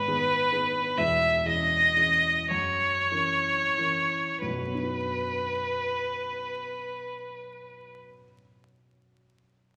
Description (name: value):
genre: classical, romantic duo for violin and grand piano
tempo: 28-48 BPM (dotted quarters)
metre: 6/8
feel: rubato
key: B major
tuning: A4 = 440 Hz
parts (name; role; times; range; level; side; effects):
- rich violin; melody; 0.0-8.0 s; B4 to E5; -27 LUFS; equal; none
- dark baby grand piano; accompaniment; 0.0-9.8 s; E1 to A#4; -36 LUFS; equal; none
room: moderate recital hall reverb, RT60 1.7 s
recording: vinyl crackle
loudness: -26 LUFS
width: mono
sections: 0.0-4.4 A section; 4.4-9.8 B section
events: slowing down 0.0-4.4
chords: 0.0 G#m; 1.0 C#m/E; 2.5 F#7; 4.4 B